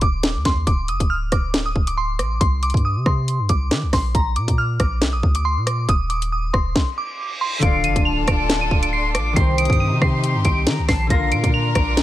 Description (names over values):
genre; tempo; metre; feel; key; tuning
hip hop, drill; 138 BPM; 4/4; half-time; unclear; A4 = 441 Hz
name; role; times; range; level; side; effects
glassy synth bell; melody; 0.0-12.0 s; Bb5 to F7; -24 LUFS; right 1 dB; chorus, tremolo, low-pass filter, ping-pong delay
long sustained 808-style bass; bass; 0.0-12.0 s; D1 to Eb3; -22 LUFS; equal; none
drill drum kit; drums; 0.0-12.0 s; hi-hat, kick drum, rim click, snare drum; -19 LUFS; equal; vintage 12-bit sampler grit
reverse cymbal and impact; sound effects; 7.0-9.4 s; none; -31 LUFS; right 2 dB; none
silver concert flute; second line; 7.6-12.0 s; F5 to Eb6; -26 LUFS; left 6 dB; ping-pong delay
concert harp; accompaniment; 7.6-12.0 s; D3 to D5; -25 LUFS; left 2 dB; low-pass filter
clear symphonic string section; sustained chords; 7.6-12.0 s; C3 to Bb4; -28 LUFS; equal; none
room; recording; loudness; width
small room ambience; none; -17 LUFS; side -14 dB against mid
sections
0.0-7.6 A section; 7.6-12.0 B section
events
stop 6.8-7.6; reverse cymbal 7.0-7.6; impact 7.6-9.4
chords
0.0 Cmadd9/Eb; 0.7 N.C.; 2.4 C5; 4.1 Bb; 5.9 Cmadd9/Eb; 7.6 Dm; 9.4 Cm; 11.1 Bb